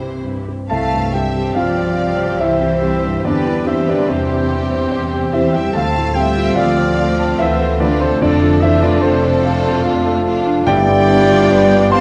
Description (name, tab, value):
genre	classical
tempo	72 BPM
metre	3/4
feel	rubato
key	C major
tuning	A4 = 441 Hz
part	warm grand piano	melody	0.0-12.0 s	C2 to C6	-19 LUFS	equal	none
part	warm symphonic violin section	melody	0.0-12.0 s	F4 to C5	-34 LUFS	equal	none
part	warm symphonic violin section	second line	0.0-12.0 s	E4 to A5	-30 LUFS	equal	none
part	warm symphonic viola section	accompaniment	0.0-12.0 s	E3 to D4	-29 LUFS	equal	none
part	rich symphonic cello section	bass	0.0-12.0 s	C3 to C4	-25 LUFS	equal	none
part	mellow silver concert flute	second line	0.7-12.0 s	G4 to A5	-27 LUFS	equal	none
part	dark French horn section	sustained chords	0.7-12.0 s	C4 to C5	-26 LUFS	equal	none
part	warm trombone section	sustained chords	0.7-12.0 s	none	barely audible	none	none
part	clear trumpet section	stabs	0.7-12.0 s	C5 to C6	-26 LUFS	equal	none
part	warm symphonic double bass section	bass	0.7-12.0 s	F1 to E2	-25 LUFS	equal	none
part	dark bassoon	accompaniment	1.6-12.0 s	A3 to G4	-25 LUFS	equal	none
part	timpani	percussion	10.7-11.9 s	G2	-28 LUFS	equal	none
room	moderate scoring stage reverb, RT60 1.5 s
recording	nothing above 10.4 kHz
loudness	-15 LUFS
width	mono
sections	0.7-12.0 A section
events	none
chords	0.0 C; 3.3 C/E; 5.7 Dm7; 8.2 Dm/F; 10.7 G7